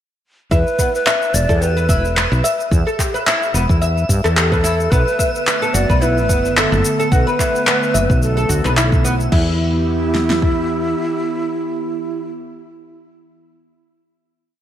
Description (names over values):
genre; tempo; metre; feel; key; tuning
organic downtempo; 109 BPM; 4/4; swing 56% on 16ths; E minor pentatonic; A4 = 440 Hz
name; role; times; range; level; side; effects
breathy ney; melody; 0.5-12.3 s; E4 to D5; -21 LUFS; right 1 dB; digital delay
oud; arpeggios; 0.5-9.6 s; B3 to E5; -21 LUFS; left 2 dB; digital delay
woody fretless electric bass; bass; 0.5-10.9 s; E1 to G2; -18 LUFS; equal; tube saturation
deep house drum kit; drums; 0.5-10.6 s; kick drum, snare drum; -18 LUFS; equal; none
deep house drum kit; drums; 0.5-9.4 s; cabasa, crash cymbal, handclaps; -20 LUFS; left 1 dB; gated reverb
twinkling granular texture; texture; 1.0-9.3 s; E5; -30 LUFS; equal; built-in reverb
airy breathy pad; sustained chords; 5.2-12.3 s; D3 to G4; -24 LUFS; right 2 dB; chorus, sidechain pumping
room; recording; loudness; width
moderate plate reverb, RT60 2.1 s; bright 1980s-style digital production; -14 LUFS; side -10 dB against mid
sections
0.5-9.3 groove; 9.3-11.5 final chord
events
none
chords
0.5 Em; 4.9 Bm7; 9.3 Em